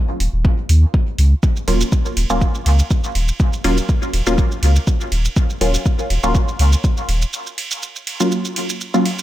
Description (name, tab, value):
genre	dub techno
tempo	122 BPM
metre	4/4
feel	swing 54% on 16ths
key	Eb minor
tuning	A4 = 441 Hz
part	pure sine sub bass	bass	0.2-7.2 s	Eb1 to Eb2	-15 LUFS	equal	sidechain pumping
part	soft vintage rhythm box	drums	0.2-9.2 s	hi-hat, ride cymbal, shaker	-25 LUFS	right 4 dB	none
part	electronic kick drum	drums	0.4-6.9 s	none	-16 LUFS	equal	overdrive
part	filtered dub chord stab	stabs	1.7-9.1 s	Gb3 to F4	-21 LUFS	equal	chorus, phaser, sidechain pumping, dub echo
room	light reverb, digital ambience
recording	none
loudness	-15 LUFS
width	side -14 dB against mid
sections	0.0-9.2 A section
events	break 7.3-9.2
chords	0.0 Ebm9